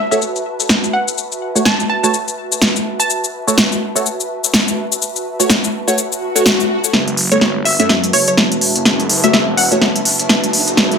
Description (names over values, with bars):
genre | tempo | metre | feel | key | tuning
bass house | 125 BPM | 4/4 | swing 59% on 16ths | F# minor | A4 = 439 Hz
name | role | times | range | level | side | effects
glassy wavetable pluck | melody | 0.0-3.3, 7.3-10.1 s | C#5 to A5 | -19 LUFS | equal | chorus, ping-pong delay
airy breathy pad | texture | 0.0-11.0 s | F#4 to A5 | -23 LUFS | right 1 dB | chorus
band-passed chord stab | stabs | 0.1-9.8 s | A3 to C#5 | -18 LUFS | right 1 dB | phaser, ensemble chorus, cassette tape, ping-pong delay
big-room dance drum kit | drums | 0.1-11.0 s | cabasa, hi-hat, snare drum | -14 LUFS | left 1 dB | low-pass filter on perc, low-pass filter on snare, low-pass filter on hats, low-pass filter on room
swell and riser | sound effects | 6.1-11.0 s | none | -24 LUFS | left 2 dB | none
phased detuned saw bass | bass | 6.9-11.0 s | E1 to F#2 | -22 LUFS | equal | phaser, tube saturation, high-pass filter
room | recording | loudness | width
moderate digital room reverb, RT60 1.0 s | none | -12 LUFS | side -6 dB against mid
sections
0.0-6.9 A section; 6.9-11.0 B section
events
filter sweep on synth stab 0.0-6.9; swell 6.1-6.9; build-up 6.9-11.0; drum fill 6.9-11.0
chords
0.0 F#m